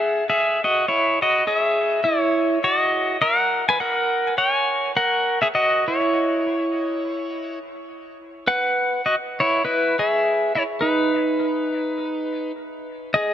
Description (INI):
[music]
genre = hawaiian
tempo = 103 BPM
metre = 4/4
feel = swing 58% on 8ths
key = unclear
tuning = A4 = 442 Hz
[part]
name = pedal steel guitar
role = solo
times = 0.0-13.3 s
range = D#4 to G#5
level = -19 LUFS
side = equal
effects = tape echo
[sound]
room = moderate plate reverb, RT60 3.1 s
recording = echo-heavy mix, nothing above 10.7 kHz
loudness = -18 LUFS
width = side -10 dB against mid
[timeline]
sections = 0.0-13.1 A section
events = none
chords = 0.0 N.C.; 1.4 F#13; 3.8 Emaj9#11; 6.1 N.C.; 8.4 F#7sus4; 10.8 N.C.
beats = 0.26 0.84 | 1.43 2.01 2.60 3.18 | 3.77 4.35 4.94 5.52 | 6.11 6.69 7.28 7.86 | 8.45 9.03 9.61 10.20 | 10.78 11.37 11.95 12.54 | 13.12